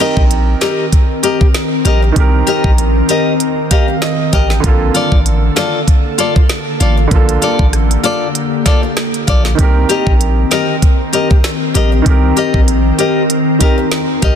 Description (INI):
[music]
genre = dancehall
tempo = 97 BPM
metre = 4/4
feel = swing 56% on 16ths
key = C dorian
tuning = A4 = 440 Hz
[part]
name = warm baby grand piano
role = accompaniment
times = 0.0-14.4 s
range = D3 to G5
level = -20 LUFS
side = right 7 dB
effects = none
[part]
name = ethereal airy pad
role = sustained chords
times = 0.6-14.4 s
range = D3 to Bb4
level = -18 LUFS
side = left 2 dB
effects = ensemble chorus, built-in reverb, sidechain pumping
[part]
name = nylon-string guitar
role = arpeggios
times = 0.0-14.4 s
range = F4 to Eb5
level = -18 LUFS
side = left 5 dB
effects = none
[part]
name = island pop drum kit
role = drums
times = 0.0-14.4 s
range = hi-hat, kick drum, rim click, snare drum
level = -13 LUFS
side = equal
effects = soft clipping on snare
[part]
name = warm 808-style bass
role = bass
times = 0.2-14.4 s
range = A1 to C2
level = -13 LUFS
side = equal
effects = none
[sound]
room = little or no reverb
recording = dense, heavily limited modern master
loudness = -10 LUFS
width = side -8 dB against mid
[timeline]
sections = 0.0-14.4 A section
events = grand piano fill 3.4-4.6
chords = 0.0 Cm7; 4.6 Bbmaj7; 9.6 Cm7